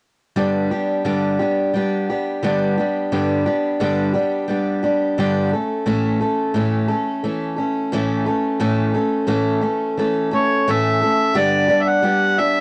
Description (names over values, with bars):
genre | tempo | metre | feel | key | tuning
rock | 87 BPM | 4/4 | straight | unclear | A4 = 440 Hz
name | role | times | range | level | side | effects
picked steel-string acoustic guitar | accompaniment | 0.4-12.6 s | G2 to A4 | -20 LUFS | equal | cassette tape
overdriven harmonica | melody | 10.3-12.6 s | C#5 to F#5 | -20 LUFS | equal | none
room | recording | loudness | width
moderate booth ambience, RT60 0.3 s | home recording on cassette | -20 LUFS | mono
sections
0.4-11.4 A section; 11.4-12.6 B section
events
none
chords
0.4 G; 5.5 A; 11.4 G